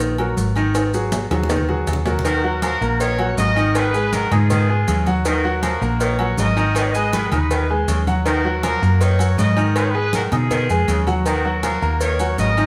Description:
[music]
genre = latin, salsa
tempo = 160 BPM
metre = 4/4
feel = straight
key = Eb minor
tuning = A4 = 439 Hz
[part]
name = bright grand piano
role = accompaniment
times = 0.0-12.7 s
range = Eb3 to Eb6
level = -25 LUFS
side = equal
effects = none
[part]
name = hollow-body short-scale fingered electric bass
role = bass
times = 0.0-12.7 s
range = Ab1 to Cb3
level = -22 LUFS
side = equal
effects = none
[part]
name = agogo bells and timbales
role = percussion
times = 0.0-12.7 s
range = none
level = -33 LUFS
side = equal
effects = none
[part]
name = congas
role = percussion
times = 0.0-12.7 s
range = none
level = -30 LUFS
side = equal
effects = none
[part]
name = cowbell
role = percussion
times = 0.0-12.6 s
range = none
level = -30 LUFS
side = equal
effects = none
[part]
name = maracas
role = percussion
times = 0.0-12.7 s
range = none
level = -38 LUFS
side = equal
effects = none
[part]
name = bright saxophone section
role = second line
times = 2.2-12.6 s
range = Db3 to F3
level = -30 LUFS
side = equal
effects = none
[part]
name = warm trumpet section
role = melody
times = 2.3-12.7 s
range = F4 to Eb5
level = -26 LUFS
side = equal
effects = none
[sound]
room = moderate studio reverb, RT60 0.9 s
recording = band playing live in one room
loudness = -19 LUFS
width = mono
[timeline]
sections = 0.0-2.3 A section; 2.3-12.7 B section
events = drum fill 0.7-2.3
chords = 0.0 Ab5; 3.8 Abm7; 5.3 Ebm7; 6.8 Abm7; 8.3 Ebm7; 9.8 Abm7; 11.3 Ebm7

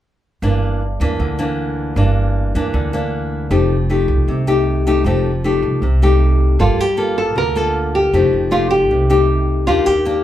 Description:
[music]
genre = bossa nova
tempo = 156 BPM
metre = 4/4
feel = straight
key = G minor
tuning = A4 = 440 Hz
[part]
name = nylon-string guitar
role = accompaniment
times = 0.4-10.2 s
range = G2 to A4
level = -18 LUFS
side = left 2 dB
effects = none
[part]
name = upright bass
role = bass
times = 0.4-10.2 s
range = F1 to Eb2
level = -18 LUFS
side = right 1 dB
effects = none
[part]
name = nylon-string guitar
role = melody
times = 6.6-10.2 s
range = F4 to Bb4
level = -17 LUFS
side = right 1 dB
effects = none
[sound]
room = moderate large studio reverb, RT60 0.8 s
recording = band playing live in one room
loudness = -14 LUFS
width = side -12 dB against mid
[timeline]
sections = 0.4-6.6 A section; 6.6-10.2 B section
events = none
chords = 0.4 Gm6; 3.5 F9; 6.6 Gm9; 8.1 F9; 9.7 Ebmaj7

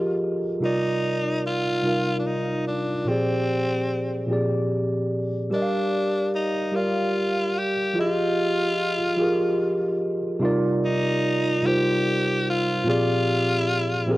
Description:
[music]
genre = R&B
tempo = 49 BPM (dotted quarters)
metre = 6/8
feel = straight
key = C minor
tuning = A4 = 440 Hz
[part]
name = raspy tenor saxophone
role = melody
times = 0.0-14.2 s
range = C4 to G4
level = -26 LUFS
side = left 1 dB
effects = cassette tape
[part]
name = mellow tine electric piano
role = accompaniment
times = 0.0-14.2 s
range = Bb2 to F5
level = -22 LUFS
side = equal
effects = wide subtle chorus, cassette tape
[sound]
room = moderate booth ambience, RT60 0.2 s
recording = home recording on cassette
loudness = -21 LUFS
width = side -17 dB against mid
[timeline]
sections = 0.6-10.4 A section; 10.4-14.2 B section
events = none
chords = 0.0 Fm9; 0.6 Cm11; 3.1 Bb13; 5.5 Gm7; 8.0 Fm9; 10.4 Cm11; 12.9 Bb13

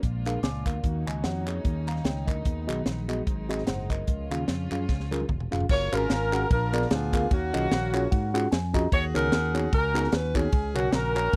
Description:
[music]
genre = uptempo gospel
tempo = 149 BPM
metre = 4/4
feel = swing 57% on 8ths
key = F# major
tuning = A4 = 444 Hz
[part]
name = mellow tine electric piano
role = accompaniment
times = 0.0-11.4 s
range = G#2 to D6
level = -33 LUFS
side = equal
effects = none
[part]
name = warm chamber string section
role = sustained chords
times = 0.0-5.7 s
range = E#3 to F#4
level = -42 LUFS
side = equal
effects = none
[part]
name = fingered electric bass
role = bass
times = 0.0-11.4 s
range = E1 to G#2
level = -33 LUFS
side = equal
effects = none
[part]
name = tight funk drum kit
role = drums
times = 0.0-11.4 s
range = crash cymbal, hi-hat, kick drum, ride cymbal, snare drum, toms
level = -29 LUFS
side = equal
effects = none
[part]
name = group handclap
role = percussion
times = 0.3-11.2 s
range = none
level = -41 LUFS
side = equal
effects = none
[part]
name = clear saxophone section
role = melody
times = 5.7-11.4 s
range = A#3 to C#5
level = -30 LUFS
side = equal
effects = none
[sound]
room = little or no reverb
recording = dry, close 1970s-style studio recording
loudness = -27 LUFS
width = mono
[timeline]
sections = 0.0-5.7 A section; 5.7-11.4 B section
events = drum fill 4.9-5.7; tine electric piano fill 7.7-8.9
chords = 0.0 A#7; 0.8 D#m7; 1.6 D#7; 2.5 G#m7; 3.3 G#7; 4.1 C#; 5.7 F#maj9; 6.5 A#7b9; 7.3 D#m11; 8.9 B69; 10.5 F#

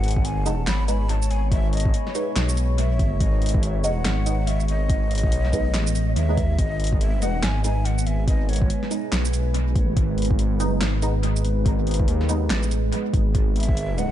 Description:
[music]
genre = deep dubstep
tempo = 142 BPM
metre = 4/4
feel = swing 61% on 16ths, half-time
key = G# phrygian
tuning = A4 = 440 Hz
[part]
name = breathy ney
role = melody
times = 0.0-8.9, 13.6-14.1 s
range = C#5 to B5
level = -33 LUFS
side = left 2 dB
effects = dub echo
[part]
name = deep dark ambient pad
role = sustained chords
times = 0.0-14.1 s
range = G#3 to C#5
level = -30 LUFS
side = right 1 dB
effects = chorus, built-in reverb
[part]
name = dark detuned saw bass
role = bass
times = 0.0-14.1 s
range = G#1 to D#2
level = -22 LUFS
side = equal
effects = none
[part]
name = deep house drum kit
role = drums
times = 0.0-14.1 s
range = handclaps, hi-hat, shaker, snare drum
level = -30 LUFS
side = equal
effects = overdrive, analog delay
[part]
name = electronic kick drum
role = drums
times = 0.2-13.8 s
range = none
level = -22 LUFS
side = equal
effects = overdrive
[part]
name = filtered dub chord stab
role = stabs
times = 0.5-14.1 s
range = G#3 to D#4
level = -31 LUFS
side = right 2 dB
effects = phaser, ensemble chorus, dub echo
[sound]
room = little or no reverb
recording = echo-heavy mix, nothing above 10.6 kHz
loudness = -20 LUFS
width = side -12 dB against mid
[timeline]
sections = 0.0-14.1 A section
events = none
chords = 0.0 G#m

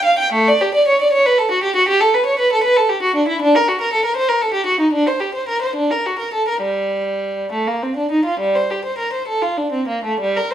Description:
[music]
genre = classical, baroque-style suite movement for unaccompanied violin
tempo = 60-81 BPM (dotted quarters)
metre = 12/8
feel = rubato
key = G minor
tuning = A4 = 440 Hz
[part]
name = rich violin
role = solo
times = 0.0-10.5 s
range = G3 to G5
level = -15 LUFS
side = equal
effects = none
[sound]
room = light reverb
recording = studio ambience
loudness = -15 LUFS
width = side -10 dB against mid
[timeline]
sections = 0.0-10.2 A section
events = none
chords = none

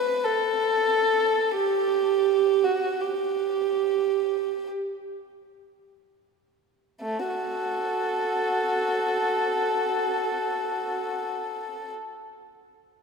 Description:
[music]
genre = classical, free, expressive piece for unaccompanied violin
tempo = free time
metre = none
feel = none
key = unclear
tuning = A4 = 440 Hz
[part]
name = dark violin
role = solo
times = 0.0-11.9 s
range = A3 to B4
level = -23 LUFS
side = right 2 dB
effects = none
[sound]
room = wet church reverb, RT60 2.8 s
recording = minimal, uncompressed stereo recording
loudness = -23 LUFS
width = side -4 dB against mid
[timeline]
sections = 0.0-7.0 A section; 7.0-13.0 B section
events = slowing down 0.0-7.0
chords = none

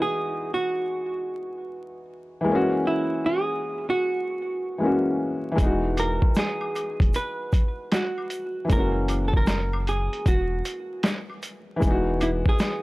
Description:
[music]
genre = lo-fi hip hop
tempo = 77 BPM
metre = 4/4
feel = swing 65% on 16ths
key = E lydian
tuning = A4 = 437 Hz
[part]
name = hollow-body jazz guitar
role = melody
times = 0.0-12.8 s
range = E4 to B4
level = -27 LUFS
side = right 2 dB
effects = low-pass filter
[part]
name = felt-muted upright piano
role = accompaniment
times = 0.0-12.8 s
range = E3 to F#4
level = -27 LUFS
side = left 1 dB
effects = cassette tape, low-pass filter
[part]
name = soft dub sub bass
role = bass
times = 5.6-12.4 s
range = E1 to F#1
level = -27 LUFS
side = equal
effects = none
[part]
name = lo-fi sampler-style drum kit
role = drums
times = 5.6-12.8 s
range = hi-hat, kick drum, snare drum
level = -22 LUFS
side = equal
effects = overdrive
[part]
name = egg shaker and woodblock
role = percussion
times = 5.6-12.8 s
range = none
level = -40 LUFS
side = left 2 dB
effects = none
[sound]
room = little or no reverb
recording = dry, gritty hardware recording, vinyl crackle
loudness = -22 LUFS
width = side -20 dB against mid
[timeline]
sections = 0.0-12.8 A section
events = none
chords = 0.0 Emaj9; 2.5 F#7; 5.6 Emaj9; 8.7 F#7; 11.8 Emaj9

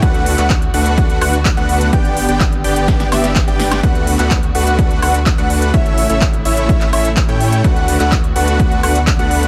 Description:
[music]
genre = EDM, festival progressive house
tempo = 126 BPM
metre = 4/4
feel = straight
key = D major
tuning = A4 = 440 Hz
[part]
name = dark symphonic string section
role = sustained chords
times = 0.0-9.5 s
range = C#3 to G4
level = -27 LUFS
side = equal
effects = sidechain pumping
[part]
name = unison lead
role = arpeggios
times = 0.0-9.5 s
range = E5 to G5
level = -24 LUFS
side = equal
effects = sidechain pumping, tape echo
[part]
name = big supersaw lead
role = riff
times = 0.0-9.5 s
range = A3 to G5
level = -21 LUFS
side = equal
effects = cassette tape, sidechain pumping, tape echo
[part]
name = saturated sub bass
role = bass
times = 0.0-9.5 s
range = G1 to A2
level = -21 LUFS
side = equal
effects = sidechain pumping
[part]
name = big-room dance drum kit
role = drums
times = 0.0-9.5 s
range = handclaps, hi-hat, snare drum, woodblock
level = -24 LUFS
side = equal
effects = overdrive
[part]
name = electronic kick drum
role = drums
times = 0.0-9.2 s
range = none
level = -18 LUFS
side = equal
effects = overdrive
[sound]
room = little or no reverb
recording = none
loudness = -14 LUFS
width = mono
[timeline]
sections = 0.0-9.5 A section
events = drum fill 2.9-3.8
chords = 0.0 D6; 1.9 G; 3.8 D6; 5.7 A; 7.6 D6

